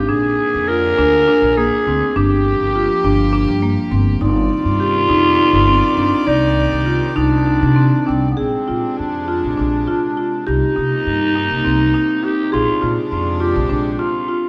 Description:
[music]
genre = contemporary instrumental, chamber music in an uneven meter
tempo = 204 BPM (eighths)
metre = 7/8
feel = straight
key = C minor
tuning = A4 = 439 Hz
[part]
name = growling clarinet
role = second line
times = 0.0-14.5 s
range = B3 to Bb4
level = -20 LUFS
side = equal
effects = none
[part]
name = rich chamber string section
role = sustained chords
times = 0.0-14.5 s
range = C3 to D5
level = -28 LUFS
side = equal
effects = none
[part]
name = marimba with medium mallets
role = arpeggios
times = 0.0-14.5 s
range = Bb3 to D5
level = -21 LUFS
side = equal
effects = none
[part]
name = upright bass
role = bass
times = 0.0-14.0 s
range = G1 to C3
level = -22 LUFS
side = equal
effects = none
[sound]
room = wet recital hall reverb, RT60 1.6 s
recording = dark, warm production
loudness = -16 LUFS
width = mono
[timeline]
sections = 0.0-8.4 A section; 8.4-14.5 B section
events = none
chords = 0.1 Bb7; 2.2 Gm7; 4.2 Cmadd9/G; 6.3 Cmadd9; 8.4 Bb9; 10.5 Cm7; 12.5 Bb9

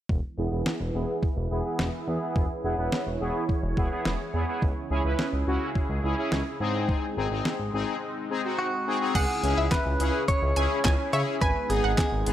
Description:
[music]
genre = synth-pop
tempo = 106 BPM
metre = 4/4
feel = straight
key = C# minor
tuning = A4 = 440 Hz
[part]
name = sweeping resonant pad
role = sustained chords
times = 0.1-12.3 s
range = C#3 to C#5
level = -34 LUFS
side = right 2 dB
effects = chorus, low-pass filter
[part]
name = smooth synth bass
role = bass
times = 0.1-12.3 s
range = E1 to C#3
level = -29 LUFS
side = equal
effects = none
[part]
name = detuned 8-bit digital drum machine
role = drums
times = 0.1-12.3 s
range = crash cymbal, handclaps, hi-hat, kick drum, snare drum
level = -28 LUFS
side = equal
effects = overdrive
[part]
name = analog synth brass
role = accompaniment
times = 0.4-12.3 s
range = B3 to B4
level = -30 LUFS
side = left 2 dB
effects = chorus, low-pass filter
[part]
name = direct-recorded clean electric guitar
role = melody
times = 8.6-12.3 s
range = F#4 to C#5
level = -28 LUFS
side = right 1 dB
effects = tape echo
[part]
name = analog pluck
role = second line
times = 9.2-12.2 s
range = E5 to G#5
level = -32 LUFS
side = right 2 dB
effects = chorus, tape echo
[sound]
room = light reverb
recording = none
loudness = -24 LUFS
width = side -11 dB against mid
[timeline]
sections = 0.1-9.2 A section; 9.2-12.3 B section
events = filter sweep 0.1-9.2; silent gap 8.0-9.2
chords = 0.1 E; 4.6 C#m; 6.6 G#; 9.2 C#m; 11.4 G#m

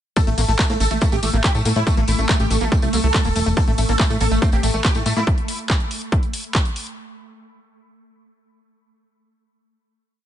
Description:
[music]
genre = psychedelic trance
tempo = 141 BPM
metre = 4/4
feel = straight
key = A phrygian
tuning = A4 = 443 Hz
[part]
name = dense compressed supersaw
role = melody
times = 0.2-5.2 s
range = A3 to A4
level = -25 LUFS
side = right 1 dB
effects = phaser, sidechain pumping, dub echo
[part]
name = swarming drone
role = sustained chords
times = 2.0-5.3 s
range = A3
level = -30 LUFS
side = equal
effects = built-in reverb, sidechain pumping
[part]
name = screaming distorted acid line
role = riff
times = 0.2-5.2 s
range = A3 to Bb3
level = -28 LUFS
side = moving between left 8 dB and right 5 dB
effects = distortion, chorus, auto-pan, sidechain pumping, dub echo
[part]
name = electronic kick drum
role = drums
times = 0.2-6.6 s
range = none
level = -19 LUFS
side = equal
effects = overdrive, small room ambience
[part]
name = techno drum kit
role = drums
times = 0.2-7.0 s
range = handclaps, hi-hat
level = -26 LUFS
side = equal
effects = overdrive, small room ambience
[part]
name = tambourine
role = percussion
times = 0.2-5.3 s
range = none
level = -31 LUFS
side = left 7 dB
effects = none
[part]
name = plucky analog bass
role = bass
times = 0.3-5.2 s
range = E1 to A2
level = -20 LUFS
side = equal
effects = none
[part]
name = metallic wobble bass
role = second line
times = 4.4-5.2 s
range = A3 to C4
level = -34 LUFS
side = right 4 dB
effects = none
[sound]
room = little or no reverb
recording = nothing above 10.4 kHz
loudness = -16 LUFS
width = side -11 dB against mid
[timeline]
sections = 0.2-7.0 drop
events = drop 0.2-7.0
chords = 0.2 A5

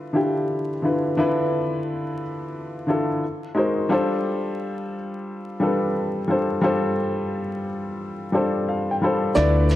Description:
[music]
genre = lo-fi hip hop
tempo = 88 BPM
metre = 4/4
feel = swing 66% on 16ths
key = unclear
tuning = A4 = 441 Hz
[part]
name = warm upright piano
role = accompaniment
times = 0.0-9.8 s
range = D3 to B5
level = -22 LUFS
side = left 1 dB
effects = cassette tape
[part]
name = felt-muted upright piano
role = melody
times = 9.4-9.8 s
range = D5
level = -21 LUFS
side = right 1 dB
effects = none
[part]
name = phased string machine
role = sustained chords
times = 9.4-9.8 s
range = none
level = barely audible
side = none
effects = none
[part]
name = deep dub fingered electric bass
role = bass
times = 9.4-9.8 s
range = D2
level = -18 LUFS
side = equal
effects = none
[part]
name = electronic hi-hat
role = drums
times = 9.4-9.8 s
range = none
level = -35 LUFS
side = right 2 dB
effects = overdrive, vintage 12-bit sampler grit
[part]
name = maracas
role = percussion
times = 9.4-9.8 s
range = none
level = -45 LUFS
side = left 1 dB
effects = none
[sound]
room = moderate echo chamber reverb, RT60 2.1 s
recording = echo-heavy mix, vinyl crackle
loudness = -21 LUFS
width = side -14 dB against mid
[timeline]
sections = 0.0-9.4 A section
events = upright piano fill 8.0-9.4; kick muted 9.4-9.8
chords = 0.0 Dm69; 3.2 G#9; 3.9 G9sus4

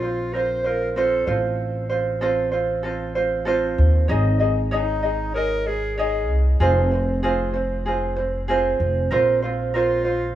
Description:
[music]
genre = acoustic pop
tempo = 96 BPM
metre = 4/4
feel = straight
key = unclear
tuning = A4 = 441 Hz
[part]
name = clear clarinet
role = melody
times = 0.0-10.3 s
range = Eb4 to C5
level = -26 LUFS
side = equal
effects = none
[part]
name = ukulele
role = accompaniment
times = 0.0-10.4 s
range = C4 to Eb5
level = -22 LUFS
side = right 2 dB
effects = none
[part]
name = upright bass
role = bass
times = 0.0-10.4 s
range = F1 to Eb2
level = -23 LUFS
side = equal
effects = none
[sound]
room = light reverb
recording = rough home demo mix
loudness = -19 LUFS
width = side -12 dB against mid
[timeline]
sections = 0.0-10.4 A section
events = none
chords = 0.0 Bbsus2; 1.3 F/A; 4.1 Absus4; 6.6 Fm; 9.1 Bbsus2

